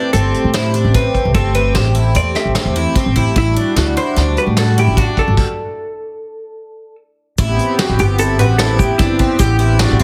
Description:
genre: progressive instrumental, band music in an uneven meter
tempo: 149 BPM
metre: 5/4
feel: straight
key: A dorian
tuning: A4 = 441 Hz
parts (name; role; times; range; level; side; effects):
- vintage hollow-body jazz guitar; melody; 0.0-10.0 s; E4 to E5; -22 LUFS; equal; none
- chorused pulse-width pad; accompaniment; 0.0-10.0 s; G3 to G4; -24 LUFS; equal; none
- picked twelve-string acoustic guitar; arpeggios; 0.0-10.0 s; C4 to G4; -24 LUFS; equal; none
- upright bass; bass; 0.1-10.0 s; G1 to A2; -18 LUFS; equal; none
- vintage brush drum kit; drums; 0.1-10.0 s; crash cymbal, hi-hat, kick drum, snare drum; -21 LUFS; equal; none
- egg shaker; percussion; 7.4-9.6 s; none; -33 LUFS; equal; none
- mellow flugelhorn; second line; 9.4-10.0 s; F#4 to G4; -24 LUFS; equal; none
room: light reverb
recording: heavily compressed radio sound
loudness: -15 LUFS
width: mono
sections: 0.0-7.4 A section; 7.4-10.0 B section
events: stop 5.4-7.4; hollow-body jazz guitar solo 7.4-10.0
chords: 0.0 Am7; 3.4 Em9/A; 5.4 N.C.; 7.4 Am7

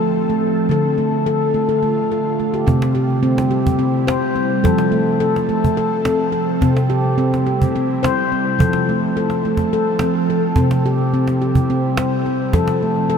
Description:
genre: world meditative, meditative tuned percussion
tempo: 213 BPM (eighths)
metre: 7/8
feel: straight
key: unclear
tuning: A4 = 439 Hz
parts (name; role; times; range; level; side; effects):
- ethereal airy pad; sustained chords; 0.0-13.2 s; C3 to A4; -23 LUFS; right 1 dB; ensemble chorus, built-in reverb, phaser
- handpan; arpeggios; 0.0-13.2 s; C3 to C5; -16 LUFS; left 1 dB; analog delay
- cajon; percussion; 2.7-13.0 s; none; -20 LUFS; right 2 dB; none
room: wet huge ambient reverb, RT60 8.8 s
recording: dreamy mix soaked in reverb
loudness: -15 LUFS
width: side -6 dB against mid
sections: 0.0-2.7 A section; 2.7-13.2 B section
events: none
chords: 0.0 F; 0.7 Dm; 2.7 C; 4.6 F; 6.6 C; 8.6 F; 10.6 C; 12.5 F

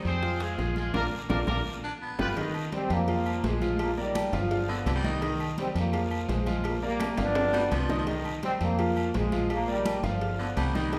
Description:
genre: latin, salsa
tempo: 168 BPM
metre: 4/4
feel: straight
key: C minor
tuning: A4 = 440 Hz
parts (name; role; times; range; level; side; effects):
- bright grand piano; accompaniment; 0.0-11.0 s; Eb3 to F5; -35 LUFS; equal; none
- fingered electric bass; bass; 0.0-11.0 s; G1 to F2; -34 LUFS; equal; none
- guiro; percussion; 0.0-11.0 s; none; -48 LUFS; equal; none
- brilliant horn section; melody; 0.1-2.3 s; Ab3 to C5; -35 LUFS; equal; none
- bongos and cowbell; percussion; 0.1-11.0 s; none; -42 LUFS; equal; none
- congas; percussion; 0.2-11.0 s; none; -40 LUFS; equal; none
- timbales and agogo bells; percussion; 0.2-11.0 s; none; -41 LUFS; equal; none
- raspy baritone saxophone; second line; 1.8-2.3, 4.7-11.0 s; D3 to D4; -39 LUFS; equal; none
- bright trombone section; melody; 2.7-10.8 s; D3 to D4; -33 LUFS; equal; none
room: wet recital hall reverb, RT60 1.5 s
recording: recorded in a church or concert hall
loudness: -28 LUFS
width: mono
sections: 0.0-2.4 A section; 2.4-11.0 B section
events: band accent 0.9-2.4; drum fill 1.8-2.4, 7.0-8.1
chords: 0.2 Fm; 0.9 Bb; 1.7 G7; 2.4 Cm; 3.1 Fm; 3.8 Bb; 4.5 G7; 5.2 Cm; 5.9 Fm; 6.6 Bb; 7.4 G7; 8.1 Cm; 8.8 Fm; 9.5 Bb; 10.2 G7

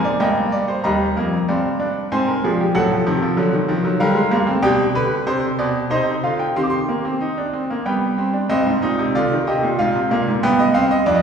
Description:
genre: classical, baroque-style 4-part fugue for grand piano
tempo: 94 BPM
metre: 3/4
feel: straight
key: C minor from 4.6 s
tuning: A4 = 442 Hz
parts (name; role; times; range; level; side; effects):
- bright grand piano; solo; 0.0-11.2 s; Eb2 to D6; -16 LUFS; equal; none
room: wet scoring stage reverb, RT60 1.6 s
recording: recorded in a church or concert hall, small room ambience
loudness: -16 LUFS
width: side -7 dB against mid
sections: 0.8-8.5 A section; 8.5-11.2 B section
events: none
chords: 0.2 Eb/G; 0.8 Cm/Eb; 2.1 Ab; 2.7 Adim7; 4.0 Bb/D; 4.6 G/B; 5.9 Cm; 6.6 Cm/Eb; 7.9 G; 8.5 Cm/G; 9.8 Fm/Ab; 10.4 G7

